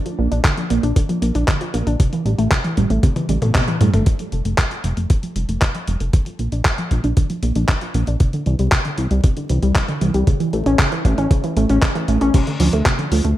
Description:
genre	italo disco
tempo	116 BPM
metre	4/4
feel	straight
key	unclear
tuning	A4 = 440 Hz
part	warbly dusty pluck	arpeggios	0.1-13.3 s	C3 to D4	-21 LUFS	right 1 dB	chorus, shimmer reverb, digital delay
part	dusty soul sampler-style drum kit	drums	0.1-13.4 s	crash cymbal, handclaps, hi-hat, toms	-22 LUFS	equal	high-pass filter on hats, high-pass filter on snare, high-pass filter on toms, high-pass filter on cymbals, gated reverb
part	chorused synth bass	bass	0.2-13.3 s	F1 to A2	-18 LUFS	equal	none
part	electronic kick drum	drums	0.4-13.0 s	none	-16 LUFS	equal	none
room	light reverb, digital ambience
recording	vinyl crackle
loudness	-16 LUFS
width	side -14 dB against mid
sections	0.0-4.1 A section; 4.1-12.3 B section; 12.3-13.4 C section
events	drum fill 3.0-4.1; band accent 3.5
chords	0.0 Bb; 2.0 A7(no3); 4.1 Fadd9; 6.1 Bb; 8.2 Cadd9; 10.3 A; 12.3 Dm

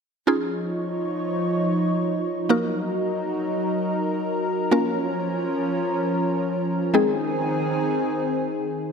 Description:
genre	pop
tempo	free time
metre	none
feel	none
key	unclear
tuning	A4 = 440 Hz
part	mallet-like synth pluck	accompaniment	0.3-8.9 s	Ab3 to Bb4	-23 LUFS	equal	chorus, phaser
part	lush unison pad	sustained chords	0.3-8.9 s	Eb3 to Db5	-23 LUFS	equal	chorus
room	moderate lush hall reverb, RT60 2.5 s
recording	none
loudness	-22 LUFS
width	side -6 dB against mid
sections	0.3-8.9 A section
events	none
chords	0.3 Dbadd9; 2.5 Ebm; 4.7 Bbm; 6.9 Ab

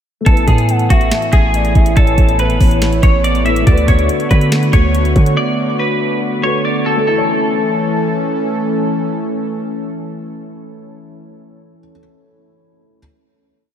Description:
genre	hip hop, trap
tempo	141 BPM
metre	4/4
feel	half-time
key	A major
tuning	A4 = 440 Hz
part	dark grand piano	accompaniment	0.2-13.0 s	A3 to C#5	-23 LUFS	left 1 dB	lush chorus
part	clean electric guitar	melody	0.3-8.3 s	F#4 to E5	-19 LUFS	left 1 dB	analog chorus, ping-pong delay
part	gliding portamento lead	second line	0.3-3.6 s	B4 to A5	-23 LUFS	equal	chorus, phaser, ping-pong delay
part	warm analog pad	sustained chords	0.3-11.2 s	A2 to A4	-19 LUFS	equal	chorus
part	hard-hitting 808-style bass	bass	0.3-5.4 s	G#1 to D3	-15 LUFS	equal	none
part	trap drum kit	drums	0.3-5.4 s	finger snaps, hi-hat, kick drum, snare drum	-13 LUFS	equal	none
room	moderate huge ambient reverb, RT60 4.5 s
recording	dreamy mix soaked in reverb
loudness	-11 LUFS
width	side -9 dB against mid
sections	0.3-7.1 hook; 7.1-10.5 final chord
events	none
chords	0.3 Asus2; 3.7 D6; 7.1 A

